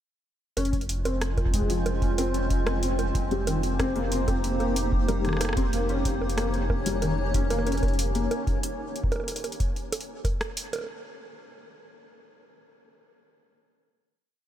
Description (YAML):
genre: IDM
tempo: 93 BPM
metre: 4/4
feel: straight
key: unclear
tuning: A4 = 440 Hz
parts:
  - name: granular cloud pad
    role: sustained chords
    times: 1.0-8.3 s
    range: Ab3 to Db5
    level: -31 LUFS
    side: equal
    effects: built-in reverb
  - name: felt-muted upright piano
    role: arpeggios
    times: 0.6-8.3 s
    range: Eb3 to Db4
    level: -31 LUFS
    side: left 2 dB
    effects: ensemble chorus, ping-pong delay
  - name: warm sub bass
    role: bass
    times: 0.6-8.3 s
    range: F1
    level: -29 LUFS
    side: equal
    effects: tube saturation
  - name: booming analog drum machine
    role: drums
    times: 0.6-10.9 s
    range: bongos, hi-hat, rim click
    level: -33 LUFS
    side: right 3 dB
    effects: diffuse ambient delay
  - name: electronic kick drum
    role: drums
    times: 0.7-10.4 s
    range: none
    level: -28 LUFS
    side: equal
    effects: none
room: light reverb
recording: none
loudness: -24 LUFS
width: side -11 dB against mid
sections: 0.6-10.9 groove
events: none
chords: 0.6 Dbmaj7/F; 3.1 Cm7/F; 5.7 Eb7/F; 8.3 N.C.